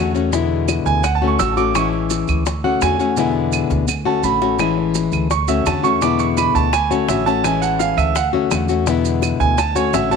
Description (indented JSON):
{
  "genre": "latin, Cuban son and guajira",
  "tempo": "169 BPM",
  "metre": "4/4",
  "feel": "straight",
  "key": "unclear",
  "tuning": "A4 = 439 Hz",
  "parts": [
    { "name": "nylon-string guitar", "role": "accompaniment", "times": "0.0-10.2 s", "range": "B2 to F#4", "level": "-19 LUFS", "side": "left 9 dB", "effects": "none" },
    { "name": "upright bass", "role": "bass", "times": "0.0-10.2 s", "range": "A1 to E2", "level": "-22 LUFS", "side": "right 1 dB", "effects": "none" },
    { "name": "bongos", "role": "percussion", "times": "0.1-10.2 s", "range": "none", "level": "-27 LUFS", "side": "left 12 dB", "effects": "none" },
    { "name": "maracas", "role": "percussion", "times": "0.2-10.2 s", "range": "none", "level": "-30 LUFS", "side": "right 16 dB", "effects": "none" },
    { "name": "claves", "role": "percussion", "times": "0.7-9.8 s", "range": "none", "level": "-28 LUFS", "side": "right 10 dB", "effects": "none" },
    { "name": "bright concert grand piano", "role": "arpeggios", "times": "0.9-10.2 s", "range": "C#5 to E6", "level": "-20 LUFS", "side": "right 10 dB", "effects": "tape echo" }
  ],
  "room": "moderate echo chamber reverb, RT60 2.2 s",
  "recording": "1960s-style stereo with parts hard left and right",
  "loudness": "-15 LUFS",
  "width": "side -5 dB against mid",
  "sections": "0.0-10.2 A section",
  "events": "grand piano solo 0.0-10.2; drum fill 3.2-4.6",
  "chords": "0.3 E7; 1.0 Dmaj7; 1.8 Amaj7; 2.5 Dmaj7; 3.2 E7; 3.9 Dmaj7; 4.6 Amaj7; 5.3 Dmaj7; 6.0 E7; 6.7 Dmaj7; 7.4 Amaj7; 8.2 Dmaj7; 8.9 E7; 9.6 Dmaj7",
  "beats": "| 0.33 0.68 1.04 1.40 | 1.75 2.11 2.46 2.82 | 3.17 3.53 3.89 4.24 | 4.60 4.95 5.31 5.67 | 6.02 6.38 6.73 7.09 | 7.45 7.80 8.16 8.51 | 8.87 9.23 9.58 9.94"
}